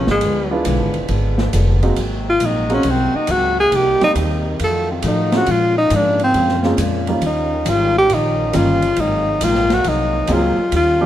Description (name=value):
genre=jazz, big band swing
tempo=137 BPM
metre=4/4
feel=swing 67% on 8ths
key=Ab mixolydian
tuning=A4 = 437 Hz
part: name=breathy tenor saxophone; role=melody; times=0.0-11.1 s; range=Ab3 to A4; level=-16 LUFS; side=equal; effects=none
part: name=picked steel-string acoustic guitar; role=accompaniment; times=0.0-11.0 s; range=Ab2 to Gb4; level=-25 LUFS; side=left 3 dB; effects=none
part: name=warm baby grand piano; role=accompaniment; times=0.0-11.1 s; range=F3 to Ab4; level=-22 LUFS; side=right 2 dB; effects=none
part: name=bright trombone section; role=sustained chords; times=0.0-11.1 s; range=C3 to Gb4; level=-27 LUFS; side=equal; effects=none
part: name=upright bass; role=bass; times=0.0-11.1 s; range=F1 to Bb2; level=-21 LUFS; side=equal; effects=none
part: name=open jazz drum kit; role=drums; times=0.1-10.9 s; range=hi-hat, ride cymbal, snare drum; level=-26 LUFS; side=right 2 dB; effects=none
room=moderate echo chamber reverb, RT60 1.8 s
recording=none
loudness=-14 LUFS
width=side -12 dB against mid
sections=0.0-11.1 A section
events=tenor saxophone solo 0.0-11.1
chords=0.2 Ddim7; 2.0 Ab9; 3.7 Cm7; 4.6 F7b9; 5.5 Bbm7; 7.2 Eb9; 9.0 Ab9